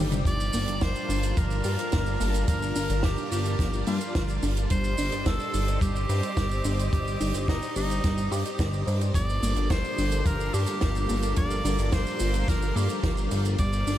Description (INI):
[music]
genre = synthwave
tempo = 108 BPM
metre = 4/4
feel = straight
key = G minor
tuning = A4 = 441 Hz
[part]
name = string machine, full ensemble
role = sustained chords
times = 0.0-14.0 s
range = G3 to A5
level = -33 LUFS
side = equal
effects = ensemble chorus, sidechain pumping
[part]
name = soft round pluck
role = arpeggios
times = 0.0-14.0 s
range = F3 to C5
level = -35 LUFS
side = right 1 dB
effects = chorus, tape echo
[part]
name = chorused synth bass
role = bass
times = 0.0-14.0 s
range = G1 to G2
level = -27 LUFS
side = equal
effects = none
[part]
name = compact cocktail drum kit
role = drums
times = 0.1-14.0 s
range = hi-hat, shaker, snare drum, toms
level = -35 LUFS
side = right 2 dB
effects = none
[part]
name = bright tenor saxophone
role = melody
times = 0.3-14.0 s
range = Eb4 to D5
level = -32 LUFS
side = equal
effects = diffuse ambient delay
[part]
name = kick drum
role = drums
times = 0.3-13.7 s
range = none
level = -28 LUFS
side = equal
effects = none
[sound]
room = light reverb, small room ambience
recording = none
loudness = -24 LUFS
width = side -12 dB against mid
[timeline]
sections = 0.0-14.0 A section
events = drum fill 0.0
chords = 0.3 Gm7; 4.7 Cmadd9/G; 9.1 Gm7